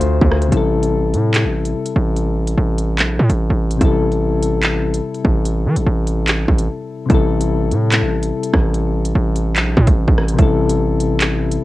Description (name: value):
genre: hip hop, drill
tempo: 146 BPM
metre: 4/4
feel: half-time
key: A minor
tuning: A4 = 440 Hz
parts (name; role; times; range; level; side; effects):
- soft electric-piano-like synth keys; accompaniment; 0.0-11.6 s; C3 to C5; -20 LUFS; left 5 dB; chorus, tremolo, low-pass filter, cassette tape, plate reverb
- distorted 808-style bass; bass; 0.0-11.6 s; A1 to E3; -17 LUFS; right 1 dB; distortion
- drill drum kit; drums; 0.0-11.6 s; handclaps, hi-hat, kick drum, rim click; -17 LUFS; right 1 dB; cassette tape
room: light reverb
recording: home recording on cassette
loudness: -14 LUFS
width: side -17 dB against mid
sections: 0.5-7.1 A section; 7.1-11.6 B section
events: break 6.7-7.1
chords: 0.0 Dm7; 0.5 Am7